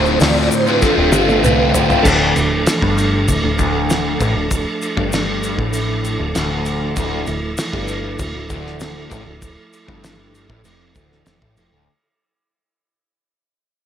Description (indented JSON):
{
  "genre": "psychedelic rock",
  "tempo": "98 BPM",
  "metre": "4/4",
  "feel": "straight",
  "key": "D minor",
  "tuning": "A4 = 440 Hz",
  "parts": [
    { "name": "tonewheel organ", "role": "sustained chords", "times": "0.0-11.8 s", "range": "F3 to D5", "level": "-22 LUFS", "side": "right 3 dB", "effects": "slow rotary speaker, overdrive, chorus vibrato" },
    { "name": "overdriven semi-hollow guitar", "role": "riff", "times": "0.0-11.9 s", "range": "D2 to F4", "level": "-18 LUFS", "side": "left 1 dB", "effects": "phaser" },
    { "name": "overdriven picked electric bass", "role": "bass", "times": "0.0-11.9 s", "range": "D1 to D2", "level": "-23 LUFS", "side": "equal", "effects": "none" },
    { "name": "tube shaker", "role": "percussion", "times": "0.1-11.7 s", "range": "none", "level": "-30 LUFS", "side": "left 7 dB", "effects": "none" },
    { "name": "cloth-damped thuddy drum kit", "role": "drums", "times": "0.2-11.7 s", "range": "crash cymbal, hi-hat, kick drum, snare drum, toms", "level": "-21 LUFS", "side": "equal", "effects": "none" }
  ],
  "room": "moderate plate reverb, RT60 2.4 s",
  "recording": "none",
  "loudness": "-14 LUFS",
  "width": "side -9 dB against mid",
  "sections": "0.0-2.0 A section; 2.0-11.9 B section",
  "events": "tonewheel organ solo 0.0-2.0; drum fill 0.8-2.0; fade-out 2.0-11.9",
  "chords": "0.0 Dm7; 2.0 Dm"
}